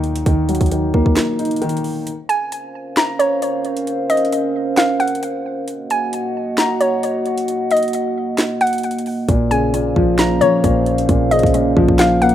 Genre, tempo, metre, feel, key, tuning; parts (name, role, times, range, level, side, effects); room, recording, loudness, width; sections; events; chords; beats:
hip hop, trap; 133 BPM; 4/4; half-time; Bb minor; A4 = 442 Hz
dark concert grand piano; accompaniment; 0.0-2.1, 9.3-12.3 s; Bb2 to Eb4; -17 LUFS; left 1 dB
clean 808-style bass; bass; 0.0-1.2, 9.3-12.3 s; Ab1 to F3; -22 LUFS; right 1 dB
trap drum kit; drums; 0.0-12.3 s; handclaps, hi-hat, kick drum, snare drum; -20 LUFS; right 1 dB
dark analog pad; sustained chords; 2.1-12.3 s; Bb3 to Gb5; -20 LUFS; right 2 dB; chorus
hollow square pluck; second line; 2.3-12.3 s; Db5 to Bb5; -18 LUFS; left 1 dB; chorus, ping-pong delay
little or no reverb; rough home demo mix; -15 LUFS; side -11 dB against mid
0.0-12.3 A section
break 1.2-2.1; kick muted 2.1-9.3
0.0 Ebm; 2.1 Bbmadd9; 5.7 Ebm; 9.3 Bbmadd9
| 0.26 0.71 1.17 1.62 | 2.07 2.52 2.97 3.42 | 3.87 4.32 4.77 5.22 | 5.68 6.13 6.58 7.03 | 7.48 7.93 8.38 8.83 | 9.29 9.74 10.19 10.64 | 11.09 11.54 11.99